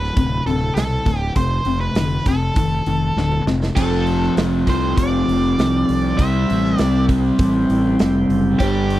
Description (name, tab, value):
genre	classic rock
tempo	100 BPM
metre	4/4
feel	straight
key	unclear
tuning	A4 = 440 Hz
part	octave-fuzz lead guitar	melody	0.0-9.0 s	G4 to E5	-25 LUFS	right 1 dB	distortion, tape echo
part	overdriven electric guitar	riff	0.0-9.0 s	D2 to C4	-20 LUFS	left 4 dB	none
part	fuzz fingered electric bass	bass	0.0-9.0 s	D1 to C2	-22 LUFS	right 1 dB	overdrive
part	big rock drum kit	drums	0.0-9.0 s	crash cymbal, hi-hat, kick drum, snare drum, toms	-21 LUFS	right 1 dB	none
part	overdriven tonewheel organ	sustained chords	3.8-9.0 s	D4 to C5	-35 LUFS	right 1 dB	none
part	overdriven electric guitar	riff	3.8-9.0 s	F2 to C4	-22 LUFS	right 8 dB	none
part	cowbell	percussion	8.6-8.7 s	none	-31 LUFS	equal	none
room	light reverb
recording	dry, close 1970s-style studio recording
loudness	-16 LUFS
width	side -14 dB against mid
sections	0.0-3.8 A section; 3.8-9.0 B section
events	drum fill 3.2-3.8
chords	0.0 D5; 1.4 F; 6.2 C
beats	0.16 0.76 | 1.36 1.97 2.57 3.17 | 3.77 4.38 4.98 5.58 | 6.19 6.79 7.39 8.00 | 8.60